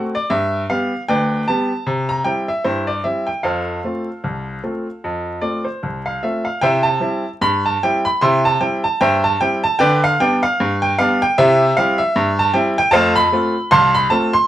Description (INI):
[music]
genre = ragtime piano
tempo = 76 BPM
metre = 2/4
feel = swing 58% on 16ths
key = F major, C major from 6.6 s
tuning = A4 = 444 Hz
[part]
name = bright upright piano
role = solo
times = 0.0-14.5 s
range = C2 to C6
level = -15 LUFS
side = equal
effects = none
[sound]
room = moderate studio ambience, RT60 0.5 s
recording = band playing live in one room, vinyl crackle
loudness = -15 LUFS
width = side -12 dB against mid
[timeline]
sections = 0.0-6.6 A section; 6.6-14.5 B section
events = none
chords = 0.3 G; 1.9 C; 3.5 F; 6.6 C; 9.8 G/D; 11.4 C; 12.9 F